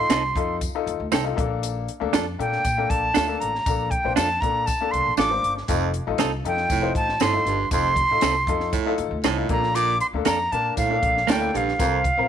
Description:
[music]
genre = uptempo 1960s-style soul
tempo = 118 BPM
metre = 4/4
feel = straight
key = unclear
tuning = A4 = 440 Hz
[part]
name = breathy bright concert flute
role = melody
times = 0.0-12.3 s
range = F5 to D6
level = -22 LUFS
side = right 1 dB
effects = none
[part]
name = bright baby grand piano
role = accompaniment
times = 0.0-12.3 s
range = Bb3 to G5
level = -28 LUFS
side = left 11 dB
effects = none
[part]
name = upright bass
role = bass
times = 0.0-12.3 s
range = F1 to Bb2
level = -29 LUFS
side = equal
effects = none
[part]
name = clean electric guitar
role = stabs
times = 0.1-11.4 s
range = Bb3 to A4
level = -27 LUFS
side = right 12 dB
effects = none
[part]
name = compact cocktail drum kit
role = drums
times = 0.1-12.2 s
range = hi-hat, kick drum, snare drum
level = -27 LUFS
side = left 1 dB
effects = none
[part]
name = tambourine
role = percussion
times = 0.1-11.9 s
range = none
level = -37 LUFS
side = left 16 dB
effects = none
[part]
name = breathy baritone saxophone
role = riff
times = 5.7-12.0 s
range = F2 to Bb2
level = -28 LUFS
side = right 12 dB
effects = none
[sound]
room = light reverb, small room ambience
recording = 1960s-style stereo with parts hard left and right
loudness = -20 LUFS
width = side -9 dB against mid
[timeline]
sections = 0.0-12.3 A section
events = grand piano fill 0.9-1.6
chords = 0.0 F7; 1.4 Bbmaj7; 5.7 F7; 9.5 Bbmaj7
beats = 0.11 0.61 1.12 | 1.63 2.14 2.64 3.15 | 3.66 4.17 4.67 5.18 | 5.69 6.20 6.71 7.21 | 7.72 8.23 8.74 9.25 | 9.76 10.27 10.77 11.28 | 11.79

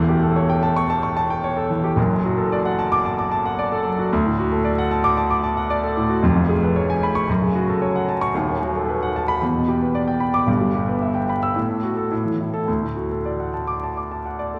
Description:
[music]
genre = classical, virtuoso piano study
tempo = 112 BPM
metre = 4/4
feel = rubato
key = D major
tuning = A4 = 440 Hz
[part]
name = clear grand piano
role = solo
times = 0.0-14.6 s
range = D#1 to E6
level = -21 LUFS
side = equal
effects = none
[sound]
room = wet cathedral reverb, RT60 4.1 s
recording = recorded in a church or concert hall, vinyl crackle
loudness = -21 LUFS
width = mono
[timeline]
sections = 0.0-14.6 A section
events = none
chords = 0.0 A7/E; 2.0 D/F#; 4.1 D; 6.2 C#7/E#; 7.3 F#m; 8.3 B7/D#; 9.4 Em7; 10.5 Em/G; 11.6 F#m/A; 12.1 A5; 12.7 D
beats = 0.35 0.89 1.43 | 1.97 2.51 3.04 3.57 | 4.11 4.64 5.17 5.70 | 6.23 6.76 7.29 7.81 | 8.34 8.87 9.41 9.94 | 10.48 11.02 11.56 12.11 | 12.68 13.25 13.82 14.39

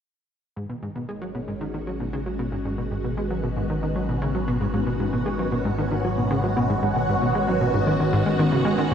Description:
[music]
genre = ambient, sequencer-driven space music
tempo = 115 BPM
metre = 4/4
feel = straight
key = G# minor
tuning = A4 = 440 Hz
[part]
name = phased string machine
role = sustained chords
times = 0.6-8.9 s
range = D#3 to F#4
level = -25 LUFS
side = equal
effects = ensemble chorus, phaser
[part]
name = plucky analog bass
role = riff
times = 0.6-8.9 s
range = G#2 to G#3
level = -25 LUFS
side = equal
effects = lush chorus, cassette tape, analog delay
[part]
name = analog drone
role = bass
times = 1.6-8.9 s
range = G#1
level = -31 LUFS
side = equal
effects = chorus
[sound]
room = wet concert hall reverb, RT60 2.1 s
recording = dark, warm production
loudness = -22 LUFS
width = side -8 dB against mid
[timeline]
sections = 0.6-8.9 A section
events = fade-in on analog synth bass 0.6-8.9; fade-in on string machine 0.6-8.9; fade-in on synth drone 0.6-8.9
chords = 0.6 G#m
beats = | 0.56 1.09 1.61 2.13 | 2.65 3.17 3.69 4.22 | 4.74 5.26 5.78 6.30 | 6.83 7.35 7.87 8.39 | 8.91

